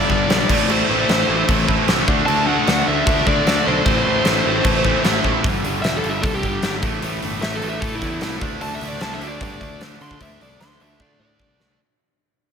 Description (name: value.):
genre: hard rock.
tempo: 151 BPM.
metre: 4/4.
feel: straight.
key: unclear.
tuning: A4 = 437 Hz.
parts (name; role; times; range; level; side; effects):
biting lead guitar; melody; 0.0-11.8 s; E4 to C6; -24 LUFS; left 1 dB; overdrive, tape echo.
mellow tonewheel organ; sustained chords; 0.0-5.4 s; G3 to E5; -33 LUFS; equal; none.
crunchy overdriven guitar; riff; 0.0-11.8 s; G2 to D4; -24 LUFS; left 11 dB; slapback echo.
distorted electric guitar; riff; 0.0-11.8 s; G2 to D4; -25 LUFS; right 12 dB; overdrive, slapback echo.
high-gain distorted guitar; riff; 0.0-5.4 s; G2 to F#4; -24 LUFS; equal; distortion.
picked electric bass; bass; 0.0-11.8 s; E1 to D3; -27 LUFS; equal; none.
huge arena drum kit; drums; 0.1-11.7 s; crash cymbal, hi-hat, kick drum, snare drum; -21 LUFS; right 1 dB; none.
room: moderate lush hall reverb, RT60 1.6 s, small room ambience.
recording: big arena sound.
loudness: -16 LUFS.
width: side -7 dB against mid.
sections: 0.0-5.4 A section; 5.4-11.8 B section.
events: drum fill 5.2, 11.0-11.8; fade-out 5.4-11.8; lead electric guitar solo 5.4-11.8.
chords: 0.5 Am; 2.1 D; 3.9 Am; 5.4 G5; 6.8 A5; 8.4 D5.